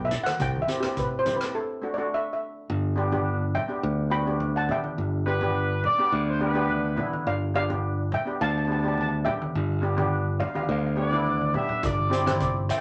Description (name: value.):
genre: calypso.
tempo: 105 BPM.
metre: 4/4.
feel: straight.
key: G major.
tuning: A4 = 440 Hz.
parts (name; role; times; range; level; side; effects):
steel pan; melody; 0.0-12.8 s; G4 to B5; -31 LUFS; equal; none.
steel pan; accompaniment; 0.0-12.6 s; A3 to G4; -32 LUFS; equal; none.
modern bright fingered electric bass; bass; 0.0-12.7 s; G1 to D2; -29 LUFS; equal; none.
street-band drum kit; drums; 0.1-1.5, 11.8-12.8 s; hi-hat, kick drum, rim click; -33 LUFS; equal; none.
congas; percussion; 0.1-12.8 s; none; -38 LUFS; equal; none.
clear horn section; second line; 5.3-7.1, 11.0-12.6 s; B4 to E5; -29 LUFS; equal; none.
room: moderate small room reverb, RT60 0.5 s.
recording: none.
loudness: -26 LUFS.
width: mono.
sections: 0.0-2.7 A section; 2.7-12.8 B section.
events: steel pan solo 0.0-2.7; break 1.6-2.7; drum fill 11.1-11.8.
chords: 0.4 C; 1.6 D; 2.7 G; 7.3 G7; 11.8 Cadd9/G.